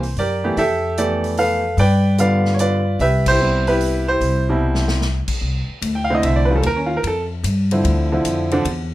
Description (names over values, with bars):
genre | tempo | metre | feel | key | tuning
jazz piano trio | 148 BPM | 3/4 | swing 66% on 8ths | C major | A4 = 439 Hz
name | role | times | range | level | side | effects
clear grand piano | melody | 0.0-8.6 s | B2 to G5 | -18 LUFS | right 1 dB | plate reverb
upright bass | bass | 0.0-8.9 s | C2 to G2 | -19 LUFS | left 1 dB | none
swinging big-band drum kit | drums | 0.0-8.8 s | crash cymbal, hi-hat, kick drum, ride cymbal, snare drum | -29 LUFS | left 2 dB | none
room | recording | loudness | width
light reverb | none | -16 LUFS | side -15 dB against mid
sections
0.0-5.4 A section; 5.4-8.9 B section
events
band accent 3.2; drum fill 4.6-5.0; grand piano solo 5.4-8.9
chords
0.0 C7; 0.6 Fmaj9#11; 1.8 G7; 3.0 Cmaj7; 5.4 C69; 6.6 Ebadd9; 7.8 Dm9